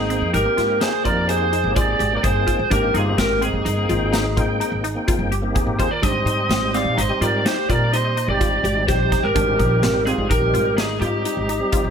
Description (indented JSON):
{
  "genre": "progressive instrumental, band music in an uneven meter",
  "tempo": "126 BPM",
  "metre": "7/4",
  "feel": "straight",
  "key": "Ab lydian",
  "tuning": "A4 = 441 Hz",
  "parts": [
    { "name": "lead guitar through a small cranked amp", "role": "melody", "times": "0.0-11.9 s", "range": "G4 to F5", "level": "-22 LUFS", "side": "equal", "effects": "overdrive" },
    { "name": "breathy flugelhorn", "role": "second line", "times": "0.0-11.9 s", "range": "Eb4 to D5", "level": "-28 LUFS", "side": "right 4 dB", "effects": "none" },
    { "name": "bright tonewheel organ", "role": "accompaniment", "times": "0.0-11.9 s", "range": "G3 to G5", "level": "-26 LUFS", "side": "equal", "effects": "chorus vibrato, slow rotary speaker" },
    { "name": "resonant blip pluck", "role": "arpeggios", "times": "0.0-11.9 s", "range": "C4 to Ab4", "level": "-28 LUFS", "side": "equal", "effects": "phaser" },
    { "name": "upright bass", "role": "bass", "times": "0.0-11.9 s", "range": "G1 to Bb2", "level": "-23 LUFS", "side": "equal", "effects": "none" },
    { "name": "big rock drum kit", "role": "drums", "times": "0.1-11.8 s", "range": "hi-hat, kick drum, snare drum", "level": "-24 LUFS", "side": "equal", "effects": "none" }
  ],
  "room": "light reverb",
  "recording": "faint mains hum",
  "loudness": "-17 LUFS",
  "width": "side -7 dB against mid",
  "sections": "0.0-11.9 A section",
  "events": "none",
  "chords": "0.0 Abmaj7; 6.0 Cm/Ab"
}